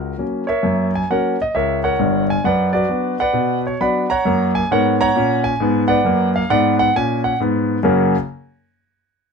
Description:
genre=jazz, stride piano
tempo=133 BPM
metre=4/4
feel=swing 63% on 8ths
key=F# major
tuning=A4 = 443 Hz
part: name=clear concert grand piano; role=solo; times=0.0-8.2 s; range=G1 to B5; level=-15 LUFS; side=equal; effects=none
room=light reverb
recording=close, detailed microphones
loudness=-15 LUFS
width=side -5 dB against mid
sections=0.6-7.9 A section; 7.9-9.3 B section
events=none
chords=0.0 F#; 2.4 Bm/F#; 4.2 F#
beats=0.18 | 0.63 1.08 1.53 1.99 | 2.44 2.89 3.34 3.79 | 4.24 4.69 5.14 5.59 | 6.05 6.50 6.95 7.40 | 7.85

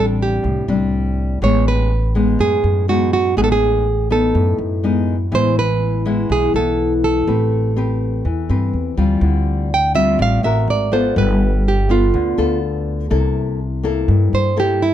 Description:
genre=bossa nova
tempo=123 BPM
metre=4/4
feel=straight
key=A minor, D minor from 9.2 s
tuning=A4 = 439 Hz
part: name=nylon-string guitar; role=melody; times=0.0-14.9 s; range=E4 to G5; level=-19 LUFS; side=right 4 dB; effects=none
part: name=nylon-string guitar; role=accompaniment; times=0.0-14.9 s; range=G2 to B4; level=-19 LUFS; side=left 4 dB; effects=none
part: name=upright bass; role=bass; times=0.0-14.9 s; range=G1 to G2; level=-19 LUFS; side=equal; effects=none
room=little or no reverb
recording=dark, warm production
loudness=-15 LUFS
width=side -11 dB against mid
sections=0.0-9.2 A section; 9.2-14.9 B section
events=nylon-string guitar solo 9.2-14.9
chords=0.0 Am11; 1.4 B6/A; 5.3 E/A; 7.3 Am9; 9.2 Dm7; 10.7 G#9; 11.2 G9; 13.1 C6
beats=0.44 0.93 | 1.41 1.90 2.39 2.88 | 3.37 3.85 4.34 4.83 | 5.32 5.80 6.29 6.78 | 7.27 7.75 8.24 8.73 | 9.22 9.70 10.19 10.68 | 11.16 11.65 12.14 12.62 | 13.11 13.60 14.08 14.57

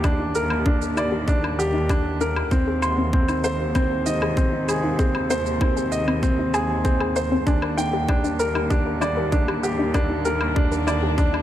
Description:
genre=piano and strings electronica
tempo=97 BPM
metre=4/4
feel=straight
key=Eb major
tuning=A4 = 440 Hz
part: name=dark string quartet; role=sustained chords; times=0.0-11.4 s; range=C3 to D4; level=-37 LUFS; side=right 2 dB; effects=none
part: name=warm upright piano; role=riff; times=0.0-11.4 s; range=C4 to C6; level=-24 LUFS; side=equal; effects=ping-pong delay
part: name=muted studio cello section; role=bass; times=0.0-11.4 s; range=Eb2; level=-26 LUFS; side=equal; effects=sidechain pumping
part: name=electronic kick drum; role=drums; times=0.0-11.3 s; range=none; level=-21 LUFS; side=equal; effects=none
part: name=shaker and woodblock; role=drums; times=0.0-11.4 s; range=none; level=-33 LUFS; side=left 2 dB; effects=none
part: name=soft round pluck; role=arpeggios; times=0.2-11.4 s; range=C4 to Ab5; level=-29 LUFS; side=left 3 dB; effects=chorus, cassette tape, sidechain pumping, ping-pong delay
room=light reverb, studio ambience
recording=none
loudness=-19 LUFS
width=side -12 dB against mid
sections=0.0-11.4 A section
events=filter sweep on synth arpeggio sound 0.0-11.4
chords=0.0 Ebmaj7; 2.5 Ab/Eb; 7.5 Ebmaj7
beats=| 0.04 0.66 1.28 1.90 | 2.52 3.14 3.76 4.38 | 4.99 5.61 6.23 6.85 | 7.47 8.09 8.71 9.32 | 9.94 10.56 11.18

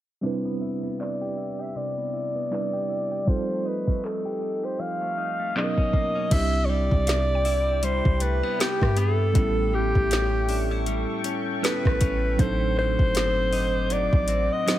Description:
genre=contemporary R&B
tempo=79 BPM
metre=4/4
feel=swing 58% on 16ths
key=C major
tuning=A4 = 441 Hz
part: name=tine electric piano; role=accompaniment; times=0.2-14.8 s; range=F#3 to C5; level=-31 LUFS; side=right 4 dB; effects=medium stereo tremolo
part: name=direct-recorded clean electric guitar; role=arpeggios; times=0.2-14.8 s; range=A2 to G4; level=-33 LUFS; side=left 7 dB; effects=spring reverb
part: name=warm alto saxophone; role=melody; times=1.0-14.8 s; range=G4 to F5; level=-26 LUFS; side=equal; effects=digital delay
part: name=smooth R&B drum kit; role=drums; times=1.0-14.8 s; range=crash cymbal, handclaps, hi-hat, kick drum, rim click, snare drum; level=-24 LUFS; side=equal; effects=none
part: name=deep dark ambient pad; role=sustained chords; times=7.3-14.8 s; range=G4 to D6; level=-34 LUFS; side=equal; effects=chorus, built-in reverb
part: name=clean 808-style bass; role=bass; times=6.3-14.5 s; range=G1 to G2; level=-26 LUFS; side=equal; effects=none
part: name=mallet-like synth pluck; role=texture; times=7.1-14.8 s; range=A4 to G5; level=-42 LUFS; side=right 1 dB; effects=none
room=little or no reverb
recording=low-pass filter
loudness=-22 LUFS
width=side -13 dB against mid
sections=0.2-6.3 A section; 6.3-14.8 B section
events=filter sweep 0.2-6.3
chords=0.2 Cmaj7; 3.3 F9; 5.6 Bmaj9; 6.3 Cmaj7; 9.4 A7; 12.4 D7b9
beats=| 0.24 1.00 1.76 2.52 | 3.27 4.03 4.79 5.55 | 6.31 7.07 7.83 8.59 | 9.35 10.11 10.87 11.63 | 12.39 13.15 13.91 14.67

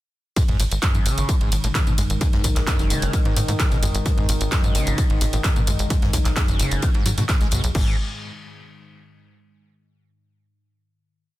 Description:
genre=driving peak-time techno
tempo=130 BPM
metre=4/4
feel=straight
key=G# phrygian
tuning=A4 = 440 Hz
part: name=screaming distorted acid line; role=riff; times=0.4-8.0 s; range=F#2 to G#3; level=-28 LUFS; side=equal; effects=distortion, lush chorus, sidechain pumping, digital delay
part: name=analog drone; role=drone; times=1.3-7.8 s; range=G#2 to D#3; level=-30 LUFS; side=left 2 dB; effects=chorus, sidechain pumping
part: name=electronic kick drum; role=drums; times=0.4-7.8 s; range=none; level=-20 LUFS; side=equal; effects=overdrive, small room ambience
part: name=natural country drum kit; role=drums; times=0.4-7.6 s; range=hi-hat, snare drum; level=-36 LUFS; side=left 3 dB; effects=none
part: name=techno drum kit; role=drums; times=0.4-7.8 s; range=crash cymbal, handclaps, hi-hat, ride cymbal, tambourine, toms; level=-26 LUFS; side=equal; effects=overdrive, small room ambience
part: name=tight sequencer bass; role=bass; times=0.5-8.0 s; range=F#1 to G#2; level=-24 LUFS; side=equal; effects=sidechain pumping
room=light reverb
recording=dense, heavily limited modern master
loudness=-18 LUFS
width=side -16 dB against mid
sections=0.4-7.7 drop; 7.7-9.6 final chord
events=drop 0.4-7.7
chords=0.4 G#5; 7.7 N.C.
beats=| 0.36 0.83 1.29 1.75 | 2.21 2.67 3.13 3.60 | 4.06 4.52 4.98 5.44 | 5.90 6.37 6.83 7.29 | 7.75

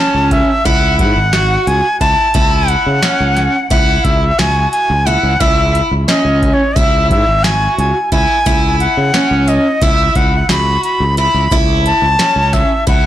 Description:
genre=progressive instrumental, band music in an uneven meter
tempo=177 BPM (eighths)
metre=9/8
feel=straight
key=unclear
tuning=A4 = 440 Hz
part: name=breathy bright jazz flute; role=melody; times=0.0-13.1 s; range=C#5 to B5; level=-15 LUFS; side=left 1 dB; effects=digital delay
part: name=picked twelve-string acoustic guitar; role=arpeggios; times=0.0-13.1 s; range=C#4 to F#4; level=-17 LUFS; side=right 2 dB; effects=none
part: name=sustaining fretless electric bass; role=bass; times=0.1-13.1 s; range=G#1 to C#3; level=-16 LUFS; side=equal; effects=none
part: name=booming analog drum machine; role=drums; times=0.3-13.0 s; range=hi-hat, kick drum, snare drum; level=-17 LUFS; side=equal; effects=none
part: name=egg shaker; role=percussion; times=8.5-12.8 s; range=none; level=-34 LUFS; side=left 8 dB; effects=none
room=moderate studio reverb, RT60 0.7 s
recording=blown-out, overdriven recording, overdrive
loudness=-10 LUFS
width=side -12 dB against mid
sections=0.0-13.1 A section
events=none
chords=0.0 A/C#; 0.7 F#m9; 2.3 F#5/C#; 3.7 Esus2/C#; 5.4 C#madd9; 6.8 C#madd11; 8.5 F#5/C#; 9.8 Esus2/C#; 11.5 A/C#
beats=0.31 0.65 0.99 1.33 1.67 2.01 | 2.35 2.69 3.03 3.37 3.70 4.04 4.38 4.72 5.06 | 5.40 5.74 6.08 6.42 6.76 7.10 7.44 7.78 8.12 | 8.46 8.79 9.13 9.47 9.81 10.15 10.49 10.83 11.17 | 11.51 11.85 12.19 12.53 12.87

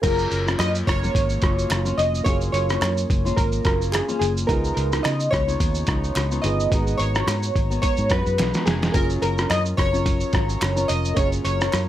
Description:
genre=indie pop, bedroom pop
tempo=108 BPM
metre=4/4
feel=swing 55% on 16ths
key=F# major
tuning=A4 = 438 Hz
part: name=warm analog keys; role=melody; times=0.0-11.9 s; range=G#4 to D#5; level=-25 LUFS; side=equal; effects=lush chorus, slapback echo
part: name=dark upright piano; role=accompaniment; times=0.0-11.9 s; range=A#3 to A#5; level=-33 LUFS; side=right 4 dB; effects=none
part: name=picked steel-string acoustic guitar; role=accompaniment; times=0.0-11.9 s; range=C#3 to A#4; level=-29 LUFS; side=left 3 dB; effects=lush chorus, vibrato effect
part: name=vintage muted fingered electric bass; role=bass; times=0.0-11.9 s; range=E#1 to C#3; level=-24 LUFS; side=equal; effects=none
part: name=lo-fi sampler-style drum kit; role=drums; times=0.0-11.9 s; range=crash cymbal, hi-hat, kick drum, rim click, shaker, snare drum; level=-24 LUFS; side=equal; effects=overdrive
part: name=group handclap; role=percussion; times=0.6-11.9 s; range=none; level=-34 LUFS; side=right 4 dB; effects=none
room=light reverb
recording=none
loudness=-19 LUFS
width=side -12 dB against mid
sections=0.0-11.9 A section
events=drum fill 8.4-8.9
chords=0.0 F#maj7; 4.5 C#9; 6.7 G#m9; 8.9 F#maj7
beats=| 0.04 0.59 1.15 1.71 | 2.26 2.82 3.38 3.93 | 4.49 5.05 5.60 6.16 | 6.72 7.28 7.83 8.39 | 8.95 9.50 10.06 10.62 | 11.17 11.73

